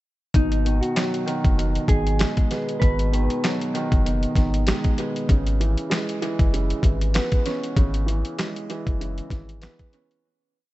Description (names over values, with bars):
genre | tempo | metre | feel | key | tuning
hip hop, boom-bap hip-hop | 97 BPM | 4/4 | swing 55% on 16ths | G# minor | A4 = 440 Hz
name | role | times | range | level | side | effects
dark baby grand piano | accompaniment | 0.3-10.3 s | B2 to C#4 | -26 LUFS | right 1 dB | cassette tape, high-pass filter, low-pass filter, analog delay
soft dub sub bass | bass | 0.3-9.7 s | F#1 to G#1 | -23 LUFS | equal | none
boom bap sampler-style drum kit | drums | 0.3-10.2 s | handclaps, hi-hat, kick drum, snare drum | -22 LUFS | equal | none
mellow electric guitar | melody | 0.4-3.6 s | D#4 to B4 | -29 LUFS | left 1 dB | wide subtle chorus, high-pass filter, low-pass filter, analog delay
room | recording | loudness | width
little or no reverb | echo-heavy mix, nothing above 8.0 kHz | -20 LUFS | side -17 dB against mid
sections
0.3-10.2 verse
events
fade-out 7.8-10.2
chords
0.3 G#m7; 5.3 E6